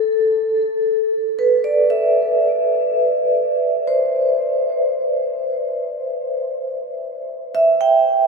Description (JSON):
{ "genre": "ambient", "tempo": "free time", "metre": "none", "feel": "none", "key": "C major", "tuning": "A4 = 440 Hz", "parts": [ { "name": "vibraphone with medium hard mallets", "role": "solo", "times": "0.0-8.3 s", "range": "A4 to G5", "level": "-16 LUFS", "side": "right 1 dB", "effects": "diffuse ambient delay" } ], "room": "wet huge ambient reverb, RT60 7.9 s", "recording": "in a vast, echoing space", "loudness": "-16 LUFS", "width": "side -4 dB against mid", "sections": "0.0-3.5 A section; 3.5-8.3 B section", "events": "none", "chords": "0.0 Cmaj7 (rootless); 3.5 Cmaj7" }